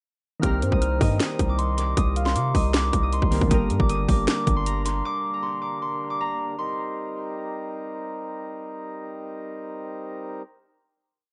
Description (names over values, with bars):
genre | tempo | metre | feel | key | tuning
hip hop, trap | 156 BPM | 4/4 | half-time | C minor | A4 = 440 Hz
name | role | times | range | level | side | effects
Celtic harp | melody | 0.4-7.9 s | Bb5 to F6 | -31 LUFS | equal | low-pass filter, tape echo
glassy digital keys | accompaniment | 0.4-6.6 s | D3 to Bb4 | -33 LUFS | equal | chorus, low-pass filter, tape echo
mellow accordion | sustained chords | 0.4-10.4 s | G3 to Bb4 | -35 LUFS | equal | none
hard-hitting 808-style bass | bass | 0.4-5.0 s | G1 to C3 | -27 LUFS | equal | none
trap drum kit | drums | 0.4-4.9 s | hi-hat, kick drum, snare drum | -26 LUFS | equal | none
soft octave-layered synth lead | second line | 0.6-2.7 s | C5 to F5 | -36 LUFS | equal | chorus, tape echo
room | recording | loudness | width
light reverb, digital ambience | echo-heavy mix, nothing above 10.5 kHz | -25 LUFS | mono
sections
0.4-6.6 hook; 6.6-9.7 final chord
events
none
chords
0.4 Cm7; 3.5 Gm; 6.6 Cm7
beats
| 0.43 0.82 1.20 1.59 | 1.97 2.35 2.74 3.12 | 3.51 3.89 4.28 4.66 | 5.05 5.43 5.82 6.20 | 6.59 6.97 7.36 7.74 | 8.12 8.51 8.89 9.28